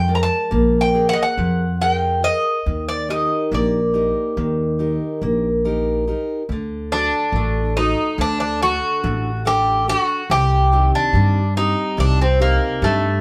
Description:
greek folk, Greek bouzouki band; 142 BPM (eighths); 9/8; straight; D phrygian dominant; A4 = 440 Hz
Greek bouzouki; melody; 0.0-13.2 s; A3 to Bb5; -22 LUFS; equal
fingerpicked steel-string acoustic guitar; accompaniment; 0.0-13.2 s; C3 to F#5; -24 LUFS; equal
upright bass; bass; 0.0-13.2 s; A1 to G2; -23 LUFS; equal
moderate studio ambience, RT60 0.5 s; band playing live in one room; -19 LUFS; mono
0.0-6.5 A section; 6.5-13.2 B section
0.0 Bb7; 2.7 Eb; 6.5 D; 10.3 Cm

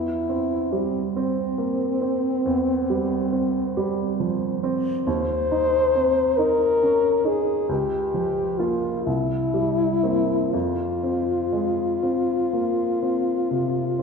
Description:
classical, romantic duo for French horn and grand piano; 40-47 BPM (dotted quarters); 12/8; rubato; A4 = 440 Hz
mellow French horn; melody; 0.0-14.0 s; C4 to C5; -22 LUFS; left 2 dB
warm baby grand piano; accompaniment; 0.0-14.0 s; C2 to F4; -25 LUFS; right 2 dB
wet scoring stage reverb, RT60 1.8 s; -20 LUFS; side -5 dB against mid
0.0-14.0 A section
0.0 C/E; 5.1 Cm/Eb; 7.7 Bbm/Db; 9.1 C7; 10.5 Fm

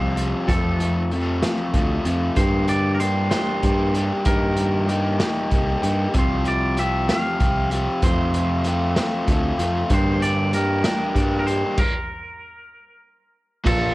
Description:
indie rock; 64 BPM (dotted quarters); 6/8; straight; A4 = 440 Hz
twangy electric guitar; melody; 0.0-13.9 s; A4 to F5; -28 LUFS; equal; analog delay
raw garage guitar; riff; 0.0-13.9 s; F2 to G4; -23 LUFS; left 1 dB; overdrive
modern bright picked electric bass; bass; 0.0-13.9 s; Bb1 to G2; -23 LUFS; equal
raw garage drum kit; drums; 0.2-13.8 s; crash cymbal, hi-hat, kick drum, snare drum; -23 LUFS; equal
raw garage guitar; riff; 13.6-13.9 s; Bb2 to F4; -26 LUFS; right 5 dB; overdrive, wide subtle chorus
studio ambience; worn, warbling old tape, cassette tape, warbly pitch drift; -18 LUFS; side -19 dB against mid
0.0-13.7 A section
stop 11.8-13.7
0.5 F; 2.4 Gm; 4.3 Eb/G; 6.1 Csus4; 8.0 F; 9.9 Gm; 11.8 N.C.

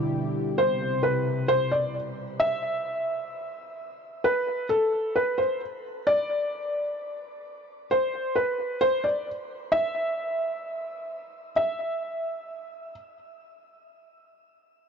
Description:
hip hop; 131 BPM; 4/4; half-time; A4 = 440 Hz
felt-muted upright piano; melody; 0.0-12.9 s; A4 to E5; -25 LUFS; equal; low-pass filter, analog delay
warm analog pad; sustained chords; 0.0-2.4 s; B2 to G4; -29 LUFS; left 1 dB; chorus
light reverb, small room ambience; dry, gritty hardware recording, nothing above 7.6 kHz; -24 LUFS; side -6 dB against mid
0.0-11.6 A section; 11.6-14.9 B section
0.0 Em7; 0.6 Cmaj7; 4.2 N.C.

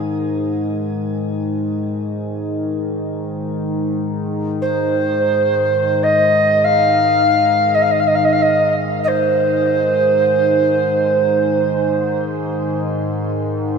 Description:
world meditative, free-time meditation music; free time; Ab major pentatonic; A4 = 440 Hz
analog drone; drone; 0.0-13.8 s; Ab2 to Eb3; -20 LUFS; left 1 dB; chorus
reedy tenor recorder; melody; 4.6-12.2 s; C5 to F5; -15 LUFS; right 1 dB; shimmer reverb, tape echo
wet lush hall reverb, RT60 3.2 s; -15 LUFS; side -5 dB against mid
0.0-3.0 A section; 3.0-13.8 A section

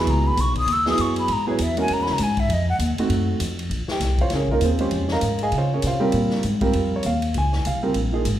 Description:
modal jazz; 198 BPM; 4/4; swing 60% on 8ths; C# dorian, Bb dorian from 3.7 s; A4 = 440 Hz
breathy concert flute; melody; 0.0-2.8 s; C#5 to E6; -23 LUFS; left 1 dB
clear concert grand piano; accompaniment; 0.0-8.2 s; F3 to Bb5; -23 LUFS; right 2 dB
upright bass; bass; 0.0-8.4 s; Ab1 to Db3; -23 LUFS; equal
swinging big-band drum kit; drums; 0.1-8.3 s; hi-hat, kick drum, ride cymbal, snare drum; -30 LUFS; left 2 dB
moderate recital hall reverb, RT60 1.4 s; recorded in a church or concert hall; -19 LUFS; side -12 dB against mid
0.0-3.7 A section; 3.7-8.4 A section
flute solo 0.0-3.7
0.0 C#m11; 2.5 F7b9; 3.7 Bbm11

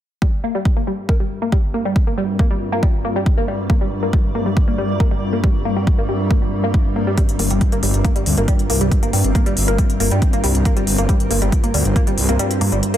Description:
driving peak-time techno; 138 BPM; 4/4; straight; G minor; A4 = 440 Hz
analog pluck; riff; 0.2-13.0 s; G3 to Bb3; -23 LUFS; equal; chorus, phaser, overdrive, sidechain pumping, ping-pong delay
metallic inharmonic drone; drone; 1.3-13.0 s; G2; -25 LUFS; equal; chorus, built-in reverb, sidechain pumping
electronic kick drum; drums; 0.2-12.0 s; -16 LUFS; equal; overdrive, studio reverb
granular cloud pad; texture; 1.3-13.0 s; G3 to D5; -26 LUFS; left 2 dB; built-in reverb, sidechain pumping
electronic hi-hat; drums; 7.2-13.0 s; -24 LUFS; left 1 dB; sidechain pumping on hats, studio reverb
detuned saw bass; bass; 7.4-12.8 s; G1 to G2; -19 LUFS; equal; sidechain pumping
light reverb, digital ambience; dense, heavily limited modern master; -15 LUFS; side -11 dB against mid
0.2-13.0 A section
filter sweep on synth arpeggio sound 0.2-13.0; kick drops out 12.4-13.0
0.2 Gm

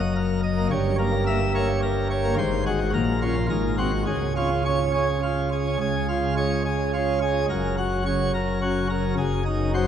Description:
classical, organ toccata; 107 BPM; 3/4; straight; Db major; A4 = 438 Hz
pipe organ, plenum; solo; 0.0-9.9 s; Gb1 to E5; -21 LUFS; equal
wet church reverb, RT60 3.3 s; nothing above 10.5 kHz; -21 LUFS; side -9 dB against mid
0.0-5.8 A section; 5.8-9.9 A section
0.0 Ebm/Gb; 0.7 Gdim7; 2.4 Ab7; 2.9 Bbm; 3.5 Ab9; 4.1 Db; 7.5 Gb; 9.2 Ab7/Gb

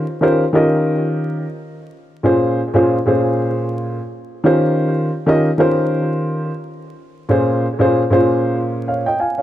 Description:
hip hop; 95 BPM; 4/4; swing 59% on 16ths; A4 = 439 Hz
dark upright piano; solo; 0.0-9.4 s; Bb2 to Ab5; -15 LUFS; equal; analog delay
light reverb, small room reverb; vinyl crackle; -14 LUFS; side -12 dB against mid
0.0-9.4 A section
0.0 Eb9; 2.2 Bbm9; 4.5 Eb13; 7.3 Bbm9

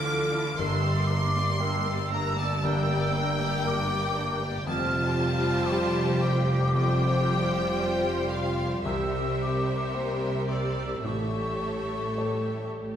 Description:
cinematic; 53-59 BPM; 4/4; rubato; A4 = 439 Hz
clear chamber violin section; melody; 0.0-12.7 s; D5 to D6; -34 LUFS; left 2 dB
mellow hollow small flute group; second line; 0.0-12.7 s; C6 to F6; -33 LUFS; equal
warm symphonic violin section; second line; 0.0-13.0 s; F4 to D5; -36 LUFS; left 3 dB
clear concert grand piano; accompaniment; 0.0-13.0 s; F1 to C#5; -32 LUFS; left 1 dB
clear symphonic viola section; accompaniment; 0.0-13.0 s; E3 to G4; -32 LUFS; equal
warm French horn section; sustained chords; 0.0-12.9 s; E3 to C5; -35 LUFS; left 2 dB
clear symphonic cello section; bass; 0.0-13.0 s; F2 to D3; -34 LUFS; right 3 dB
rich symphonic double bass section; bass; 0.0-13.0 s; F1 to D2; -32 LUFS; right 2 dB
wet recital hall reverb, RT60 1.6 s; recorded in a church or concert hall; -24 LUFS; side -9 dB against mid
0.0-13.0 A section
0.0 Dmadd9; 0.6 Gm; 4.7 Fsus2; 8.9 C7; 11.0 A7

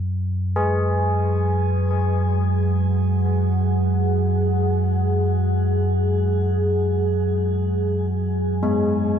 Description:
dark ambient drone; free time; A4 = 440 Hz
deep dark ambient pad; sustained chords; 2.5-9.2 s; G#4 to G#5; -26 LUFS; equal; chorus, built-in reverb, shimmer reverb
deep rumbling drone; drone; 0.0-9.2 s; F#2 to F#3; -20 LUFS; equal; built-in reverb
old church bells; arpeggios; 0.6-9.2 s; G#3 to G#4; -26 LUFS; left 2 dB; ping-pong delay, shimmer reverb
light reverb, studio reverb; dark, warm production; -19 LUFS; side -8 dB against mid
0.0-9.2 A section
fade-in on ambient pad 0.0-9.2; filter sweep on synth drone 0.0-9.2
0.0 F#sus2

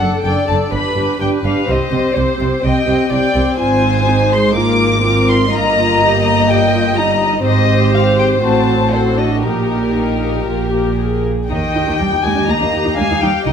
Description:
quick classical-period movement for string orchestra; 124 BPM; 4/4; rubato; C minor, Eb major from 3.6 s; A4 = 440 Hz
warm chamber violin section; melody; 0.0-13.5 s; Bb4 to D6; -19 LUFS; left 3 dB
warm chamber violin section; second line; 0.0-13.5 s; G4 to G5; -19 LUFS; left 2 dB
dark chamber viola section; accompaniment; 0.0-13.5 s; G3 to A4; -18 LUFS; left 1 dB
warm chamber cello section; bass; 0.0-13.5 s; F#2 to Bb3; -20 LUFS; right 4 dB
warm chamber double bass section; bass; 0.0-13.5 s; F#1 to Eb2; -21 LUFS; right 3 dB
moderate recital hall reverb, RT60 1.6 s; minimal, uncompressed stereo recording; -12 LUFS; side -7 dB against mid
0.0-11.5 A section; 11.5-13.5 B section
0.0 D/F#; 0.7 G; 1.7 Cm; 3.6 Fm7/Ab; 4.6 Bb7/Ab; 5.5 Eb/G; 7.5 Abmaj7; 8.4 Adim7; 9.4 Eb/Bb; 10.5 Bb5; 11.5 Eb

